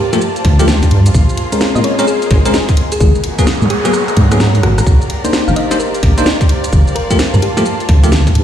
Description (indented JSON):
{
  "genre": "UK garage, two-step garage",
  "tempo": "129 BPM",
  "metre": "4/4",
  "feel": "swing 64% on 16ths",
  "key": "C minor",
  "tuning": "A4 = 440 Hz",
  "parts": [
    { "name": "thumb-piano-like synth pluck", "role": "melody", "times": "0.0-7.6 s", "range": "Gb4 to F5", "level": "-21 LUFS", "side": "left 2 dB", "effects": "chorus, ping-pong delay" },
    { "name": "muted chamber violin section", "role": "sustained chords", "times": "0.0-8.4 s", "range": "Bb3 to A5", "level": "-24 LUFS", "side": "equal", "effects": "sidechain pumping" },
    { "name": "airy breathy pad", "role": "texture", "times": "0.0-8.4 s", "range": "F4 to Bb5", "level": "-24 LUFS", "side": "right 1 dB", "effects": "chorus, phaser, sidechain pumping" },
    { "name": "barky tine electric piano", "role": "stabs", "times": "0.1-8.1 s", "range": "F3 to C5", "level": "-17 LUFS", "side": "left 1 dB", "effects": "wide subtle chorus, ping-pong delay" },
    { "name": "garage drum kit", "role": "drums", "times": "0.1-8.4 s", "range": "hi-hat, rim click, shaker, snare drum", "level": "-19 LUFS", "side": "equal", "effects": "studio reverb" },
    { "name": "deep soft wobble bass", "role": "bass", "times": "0.4-8.4 s", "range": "G1 to Bb2", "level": "-11 LUFS", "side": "equal", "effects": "chorus" },
    { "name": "electronic kick drum", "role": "drums", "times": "0.4-8.3 s", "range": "none", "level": "-12 LUFS", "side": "equal", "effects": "studio reverb" },
    { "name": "noise sweep", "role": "sound effects", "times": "3.3-4.9 s", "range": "none", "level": "-25 LUFS", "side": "right 3 dB", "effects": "none" }
  ],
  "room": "light reverb",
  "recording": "played on a big sound system in a bare room, stone room reverb",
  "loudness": "-10 LUFS",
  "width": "side -10 dB against mid",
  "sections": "0.0-8.4 A section",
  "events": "noise sweep 3.3-4.9; drum fill 3.9-4.9; kick drops out 4.4-4.9",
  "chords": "0.0 Gm9; 1.1 Bbm9; 3.0 Abm9; 4.9 Cm9; 6.7 Gm9",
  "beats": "0.21 0.68 | 1.14 1.61 2.07 2.54 | 3.00 3.47 3.94 4.40 | 4.87 5.33 5.79 6.26 | 6.72 7.19 7.66 8.12"
}